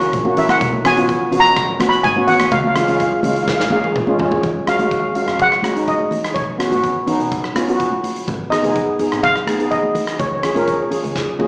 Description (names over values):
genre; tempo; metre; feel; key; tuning
calypso; 125 BPM; 4/4; straight; F# major; A4 = 439 Hz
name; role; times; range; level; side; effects
steel pan; accompaniment; 0.0-11.5 s; G#3 to A#4; -18 LUFS; equal; none
muted double bass; bass; 0.0-11.5 s; E#1 to C#3; -28 LUFS; equal; none
big rock drum kit; drums; 0.0-11.5 s; hi-hat, kick drum, rim click, snare drum, toms; -24 LUFS; equal; none
congas; percussion; 0.2-11.5 s; none; -26 LUFS; equal; none
steel pan; melody; 0.4-10.9 s; C#5 to B5; -17 LUFS; equal; none
room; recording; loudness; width
wet recital hall reverb, RT60 1.6 s; recorded in a church or concert hall, small speaker sound; -14 LUFS; side -37 dB against mid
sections
0.0-4.4 A section; 4.4-11.5 B section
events
drum fill 3.5-4.4, 11.2-11.5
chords
0.0 F#7; 0.6 Bsus2; 2.5 C#; 4.4 F#sus2; 6.4 Bsus2; 8.3 G#m; 10.2 C#